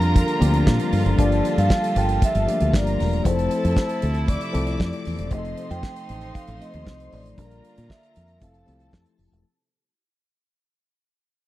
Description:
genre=disco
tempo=116 BPM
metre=4/4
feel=straight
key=unclear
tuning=A4 = 439 Hz
part: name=dark studio string section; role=second line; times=0.0-9.4 s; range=A4 to D6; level=-32 LUFS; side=left 2 dB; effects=none
part: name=mellow tine electric piano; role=accompaniment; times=0.0-9.5 s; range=F3 to C5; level=-28 LUFS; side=moving between left 7 dB and left 1 dB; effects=overdrive, auto-pan
part: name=warm studio string section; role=sustained chords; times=0.0-9.4 s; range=C3 to F4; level=-29 LUFS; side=right 3 dB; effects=none
part: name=fingered electric bass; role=bass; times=0.0-9.4 s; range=E1 to Bb2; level=-22 LUFS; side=equal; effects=none
part: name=damped 70s drum kit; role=drums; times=0.0-9.4 s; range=hi-hat, kick drum, snare drum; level=-21 LUFS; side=equal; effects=none
part: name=vibraphone with soft mallets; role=melody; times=1.2-8.9 s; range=C5 to G5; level=-27 LUFS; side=right 1 dB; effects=none
room=small room ambience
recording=dry, close 1970s-style studio recording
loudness=-19 LUFS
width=side -15 dB against mid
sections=0.0-9.4 A section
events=fade-out 0.0-9.4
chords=0.0 Bb6; 1.2 Gm7; 3.2 Fmaj7; 5.3 F7; 7.4 Bb6; 8.4 Fmaj7

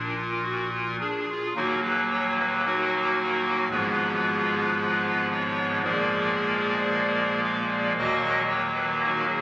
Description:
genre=classical, chorale-style piece for pipe organ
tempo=56 BPM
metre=4/4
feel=straight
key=Eb minor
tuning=A4 = 440 Hz
part: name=pipe organ, clarinet reed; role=solo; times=0.0-9.4 s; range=Eb1 to F5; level=-22 LUFS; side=equal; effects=none
room=wet cathedral reverb, RT60 5.8 s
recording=recorded on a phone in the room, club reverb, compression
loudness=-22 LUFS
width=side -18 dB against mid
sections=0.0-1.6 A section; 1.6-9.4 B section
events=none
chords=0.0 Bb; 1.6 Ebm; 3.7 Fdim/Ab; 5.9 Bb7; 8.0 Ebm

